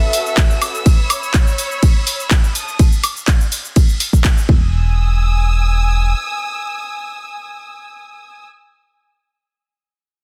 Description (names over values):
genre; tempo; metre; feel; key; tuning
piano house; 124 BPM; 4/4; straight; E major; A4 = 439 Hz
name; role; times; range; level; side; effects
clear symphonic violin section; sustained chords; 0.0-8.4 s; A4 to E6; -26 LUFS; equal; sidechain pumping
rich studio string section; texture; 0.0-0.9 s; C#4 to E5; -25 LUFS; equal; sidechain pumping
house drum kit; drums; 0.1-4.5 s; cabasa, handclaps, hi-hat, ride cymbal, woodblock; -23 LUFS; equal; none
electronic kick drum; drums; 0.4-4.6 s; none; -14 LUFS; equal; none
solid FM bass; bass; 4.5-6.1 s; E1; -17 LUFS; equal; sidechain pumping
room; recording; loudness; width
little or no reverb; dense, heavily limited modern master; -16 LUFS; mono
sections
0.0-4.7 A section; 4.7-8.6 B section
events
drop 0.0-4.7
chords
0.0 F#m7; 0.9 C#m7; 2.6 N.C.; 4.5 Emaj7